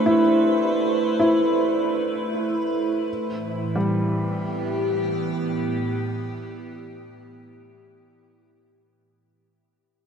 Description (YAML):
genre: ambient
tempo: free time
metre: none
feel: none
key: unclear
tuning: A4 = 440 Hz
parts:
  - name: evolving wavetable pad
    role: sustained chords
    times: 0.0-9.3 s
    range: A2 to C5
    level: -24 LUFS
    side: right 1 dB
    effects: phaser, built-in reverb, shimmer reverb
  - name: felt-muted upright piano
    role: arpeggios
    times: 0.0-9.3 s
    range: G3 to E4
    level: -23 LUFS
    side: equal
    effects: diffuse ambient delay, shimmer reverb
room: wet huge ambient reverb, RT60 8.0 s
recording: dark, warm production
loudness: -20 LUFS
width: side -7 dB against mid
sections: 0.0-9.2 A section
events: fade-out 1.1-9.2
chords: 0.0 Am; 3.1 Em/A